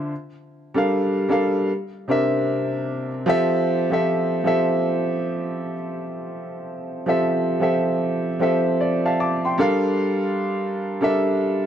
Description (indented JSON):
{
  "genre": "R&B",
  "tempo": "76 BPM",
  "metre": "4/4",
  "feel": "swing 62% on 16ths",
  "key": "F major",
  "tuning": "A4 = 438 Hz",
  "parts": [
    { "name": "clear upright piano", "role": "solo", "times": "0.0-11.7 s", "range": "C3 to D6", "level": "-20 LUFS", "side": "equal", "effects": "none" }
  ],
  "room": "studio reverb",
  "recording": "dry, close 1970s-style studio recording",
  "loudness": "-19 LUFS",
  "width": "side -9 dB against mid",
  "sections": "0.0-9.6 A section; 9.6-11.7 B section",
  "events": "upright piano fill 8.4-9.6",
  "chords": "0.1 Gm7; 1.7 C7; 3.3 Fmaj7; 9.6 Gm9"
}